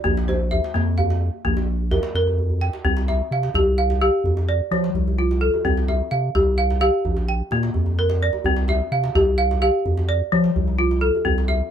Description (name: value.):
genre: west african traditional, West African string and xylophone music.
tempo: 86 BPM (dotted quarters).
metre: 12/8.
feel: straight.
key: C mixolydian.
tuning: A4 = 439 Hz.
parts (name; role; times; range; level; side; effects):
balafon; arpeggios; 0.0-11.7 s; F3 to G5; -21 LUFS; left 1 dB; none.
saturated sub bass; bass; 0.1-11.6 s; Bb1 to F3; -21 LUFS; equal; none.
djembe; percussion; 0.1-11.6 s; none; -27 LUFS; right 2 dB; none.
room: light reverb.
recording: close, detailed microphones.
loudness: -18 LUFS.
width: side -8 dB against mid.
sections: 0.0-2.9 A section; 2.9-11.7 B section.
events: drum fill 2.4-2.9.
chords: 0.0 Bb5; 2.9 C; 4.3 F; 5.7 C; 7.1 Bb; 8.5 C; 9.9 F.